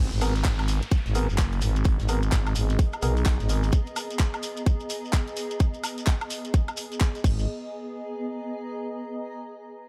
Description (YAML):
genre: bass house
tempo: 128 BPM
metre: 4/4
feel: swing 61% on 16ths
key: G# minor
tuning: A4 = 440 Hz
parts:
  - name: growling FM bass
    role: bass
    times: 0.0-3.7, 7.2-7.5 s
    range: F#1 to B1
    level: -27 LUFS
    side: equal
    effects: overdrive, sidechain pumping
  - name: downlifter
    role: sound effects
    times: 0.0-3.7 s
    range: none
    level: -45 LUFS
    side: equal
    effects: none
  - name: granular cloud pad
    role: texture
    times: 1.6-9.3 s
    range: B3 to A#5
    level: -37 LUFS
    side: equal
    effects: built-in reverb, sidechain pumping
  - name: garage drum kit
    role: drums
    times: 0.1-7.4 s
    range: crash cymbal, handclaps, hi-hat, woodblock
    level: -36 LUFS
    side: equal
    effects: overdrive, small room ambience
  - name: shekere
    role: percussion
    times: 0.1-7.5 s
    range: none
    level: -42 LUFS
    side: equal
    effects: none
  - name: percussive organ stab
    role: stabs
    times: 0.2-3.1 s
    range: B3 to A#4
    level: -37 LUFS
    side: equal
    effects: chorus, sidechain pumping, tape echo
  - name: loose indie drum kit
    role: drums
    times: 0.2-3.7 s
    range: hi-hat, snare drum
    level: -49 LUFS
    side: equal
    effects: none
  - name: electronic kick drum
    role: drums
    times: 0.4-7.4 s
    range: none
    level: -24 LUFS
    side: equal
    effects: overdrive, small room ambience
room: light reverb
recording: dark, warm production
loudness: -26 LUFS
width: mono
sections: 0.0-7.5 A section; 7.5-9.4 B section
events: none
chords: 0.0 G#madd9; 7.2 G#m; 7.5 G#madd9